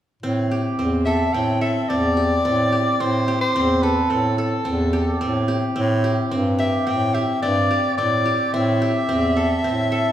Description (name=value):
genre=contemporary instrumental, chamber music in an uneven meter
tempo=108 BPM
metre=5/4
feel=straight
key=A minor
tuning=A4 = 440 Hz
part: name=qanun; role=arpeggios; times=0.2-10.1 s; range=C4 to A4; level=-22 LUFS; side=right 1 dB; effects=none
part: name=bright bass clarinet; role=bass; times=0.2-10.1 s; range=E2 to A2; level=-22 LUFS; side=equal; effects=none
part: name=breathy soprano saxophone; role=melody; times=1.1-10.1 s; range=A4 to G5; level=-22 LUFS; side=left 1 dB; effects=none
room=wet recital hall reverb, RT60 1.4 s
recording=heard from further back in the room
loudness=-18 LUFS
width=side -11 dB against mid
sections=0.2-10.1 A section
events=none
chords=0.2 Am7; 5.8 Csus2; 8.5 Am7